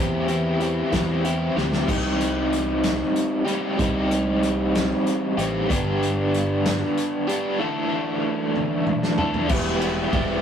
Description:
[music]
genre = indie rock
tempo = 63 BPM (dotted quarters)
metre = 6/8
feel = straight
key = unclear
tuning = A4 = 441 Hz
[part]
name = overdriven electric guitar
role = riff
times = 0.0-10.4 s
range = E3 to A4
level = -22 LUFS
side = equal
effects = tremolo
[part]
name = growling fingered electric bass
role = bass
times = 0.0-10.4 s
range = E1 to E2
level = -26 LUFS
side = equal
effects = overdrive
[part]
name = loose indie drum kit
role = drums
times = 0.3-10.3 s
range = crash cymbal, hi-hat, kick drum, ride cymbal, snare drum, toms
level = -27 LUFS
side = left 1 dB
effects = none
[sound]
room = light reverb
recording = rough rehearsal-room recording, warm saturation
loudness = -20 LUFS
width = side -8 dB against mid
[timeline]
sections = 0.0-1.9 A section; 1.9-9.5 B section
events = drum fill 1.6-1.9, 8.5-9.5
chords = 0.0 C/E; 1.9 Cm; 5.7 G; 7.6 Dsus2; 9.5 Em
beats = 0.93 | 1.89 2.84 | 3.80 4.75 | 5.70 6.65 | 7.60 8.55 | 9.50

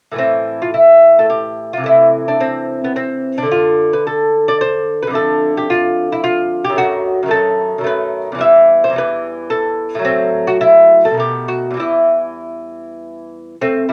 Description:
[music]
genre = classical, baroque-style dance for lute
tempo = 97-114 BPM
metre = 3/4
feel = rubato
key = A minor, E minor from 6.8 s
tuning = A4 = 444 Hz
[part]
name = lute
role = solo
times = 0.1-13.9 s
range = E2 to E5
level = -14 LUFS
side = equal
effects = none
[sound]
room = wet studio reverb, RT60 0.5 s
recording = none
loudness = -14 LUFS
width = mono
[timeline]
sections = 0.2-13.6 A section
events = none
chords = 0.2 A5; 1.9 Am/C; 3.5 D5; 5.2 Dm/F; 6.8 B7/F#; 8.4 Em; 10.0 Am6; 11.2 B7; 11.8 Em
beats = | 0.20 0.76 1.32 | 1.88 2.43 2.98 | 3.52 4.07 4.63 | 5.17 5.72 6.25 | 6.78 7.32 7.86 | 8.40 8.96 9.50 | 10.04 10.61 11.19 | 11.80 12.41 13.02 | 13.62

